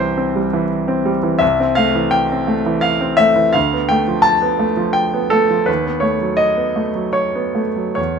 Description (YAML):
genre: classical, romantic character piece for solo piano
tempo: 68-88 BPM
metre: 3/4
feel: rubato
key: unclear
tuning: A4 = 440 Hz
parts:
  - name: bright grand piano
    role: solo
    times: 0.0-8.2 s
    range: C2 to A5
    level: -14 LUFS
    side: equal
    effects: none
room: light reverb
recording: minimal, uncompressed stereo recording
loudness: -14 LUFS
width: side -6 dB against mid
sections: 0.0-8.2 A section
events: none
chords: 0.0 C; 1.4 Am/C; 3.6 Bm7b5/D; 5.7 B7/D#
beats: 0.00 0.70 | 1.41 2.14 2.85 | 3.56 4.26 4.96 | 5.68 6.39 7.15 | 7.98